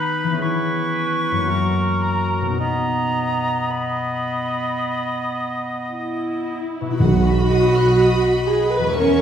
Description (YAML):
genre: classical, slow romantic movement for symphony orchestra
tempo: 52-62 BPM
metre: 4/4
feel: rubato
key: B major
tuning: A4 = 440 Hz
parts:
  - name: bright clarinet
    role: second line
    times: 0.0-6.6 s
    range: B3 to F#4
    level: -28 LUFS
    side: equal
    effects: none
  - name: bright concert flute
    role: second line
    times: 0.0-5.9 s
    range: A#5 to C#6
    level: -25 LUFS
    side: right 1 dB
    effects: none
  - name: clear oboe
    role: second line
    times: 0.0-6.6 s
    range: A#4 to D#5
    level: -26 LUFS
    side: right 2 dB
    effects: none
  - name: concert harp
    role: arpeggios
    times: 0.0-9.2 s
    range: E2 to G#4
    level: -25 LUFS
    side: left 4 dB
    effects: none
  - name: dark symphonic viola section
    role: accompaniment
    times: 5.9-9.2 s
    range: E4 to B4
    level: -18 LUFS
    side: equal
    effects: none
  - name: warm symphonic violin section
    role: melody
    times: 7.0-9.2 s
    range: B5 to C#6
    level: -29 LUFS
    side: equal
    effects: none
  - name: warm symphonic violin section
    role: second line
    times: 7.0-9.2 s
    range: D#5 to F#6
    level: -28 LUFS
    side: left 1 dB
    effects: none
  - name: rich symphonic double bass section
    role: bass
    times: 7.0-9.2 s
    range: B1 to E2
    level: -21 LUFS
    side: right 3 dB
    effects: none
  - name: timpani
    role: percussion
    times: 7.0-8.4 s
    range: B2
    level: -21 LUFS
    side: right 2 dB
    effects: none
  - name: warm symphonic cello section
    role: bass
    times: 9.0-9.2 s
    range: C#4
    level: -18 LUFS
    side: right 5 dB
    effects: none
room: wet recital hall reverb, RT60 1.4 s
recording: heard from further back in the room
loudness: -18 LUFS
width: side -9 dB against mid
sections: 0.0-7.0 A section; 7.0-9.2 A section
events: none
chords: 0.4 C#m7/E; 1.5 F#7; 2.6 B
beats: 0.42 1.50 | 2.59 3.72 4.82 5.91 | 7.00 8.00 8.97